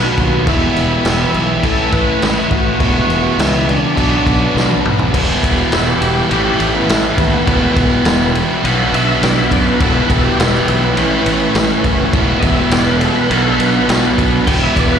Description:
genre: classic rock.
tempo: 103 BPM.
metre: 4/4.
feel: straight.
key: E dorian.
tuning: A4 = 437 Hz.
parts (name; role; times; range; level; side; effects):
overdriven tonewheel organ; melody; 0.0-15.0 s; E3 to G5; -20 LUFS; equal; slow rotary speaker, chorus vibrato, plate reverb, slapback echo.
string machine, cellos; sustained chords; 0.0-15.0 s; F#3 to C#5; -29 LUFS; right 1 dB; none.
cranked stack guitar; riff; 0.0-15.0 s; E2 to B3; -19 LUFS; left 9 dB; overdrive, slapback echo.
cranked stack guitar; riff; 0.0-15.0 s; E2 to F#4; -18 LUFS; right 11 dB; overdrive, slapback echo.
fuzz fingered electric bass; bass; 0.0-15.0 s; E1 to F#2; -19 LUFS; equal; overdrive.
vintage drum kit; drums; 0.2-14.9 s; crash cymbal, kick drum, ride cymbal, snare drum, toms; -17 LUFS; equal; none.
room: light reverb.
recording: live gig heard through the venue's PA, recital hall reverb.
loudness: -11 LUFS.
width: side -8 dB against mid.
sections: 0.0-5.1 A section; 5.1-15.0 B section.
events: drum fill 4.5-5.1; tonewheel organ solo 5.1-15.0.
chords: 0.5 Em; 1.6 Aadd9; 2.8 Em; 4.0 Bmadd9; 5.1 Em; 6.3 Aadd9; 7.5 Em; 8.6 Bm; 9.8 Em; 11.0 Aadd9; 12.1 Em; 13.3 Bm; 14.5 Em.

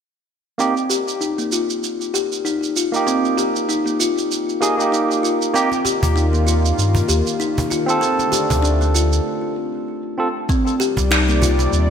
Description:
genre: organic downtempo.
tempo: 97 BPM.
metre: 4/4.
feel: swing 56% on 16ths.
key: C minor.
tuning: A4 = 439 Hz.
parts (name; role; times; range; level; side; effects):
barky tine electric piano; accompaniment; 0.6-10.3 s; Bb3 to A4; -21 LUFS; right 3 dB; sidechain pumping, ping-pong delay.
kalimba; arpeggios; 0.6-11.6 s; A3 to G4; -21 LUFS; left 3 dB; low-pass filter, ping-pong delay.
electronic shaker and finger snaps; drums; 0.6-11.9 s; none; -24 LUFS; right 4 dB; none.
warm analog pad; sustained chords; 5.5-11.9 s; C3 to D5; -26 LUFS; equal; chorus, sidechain pumping.
cajon; percussion; 5.7-11.7 s; none; -25 LUFS; right 2 dB; none.
warm sub bass; bass; 6.0-11.9 s; C2 to G2; -17 LUFS; equal; none.
electronic kick drum; drums; 10.5-10.6 s; none; -19 LUFS; equal; none.
room: moderate plate reverb, RT60 2.6 s.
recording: bright 1980s-style digital production.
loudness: -16 LUFS.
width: side -7 dB against mid.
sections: 0.6-10.5 A section; 10.5-11.9 B section.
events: filter sweep on kalimba 0.6-10.5; break 9.3-10.5.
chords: 0.6 Cm7 (rootless); 3.1 Abmaj7sus2 (rootless); 5.5 Ebadd9; 8.0 Dm7; 10.5 Cm.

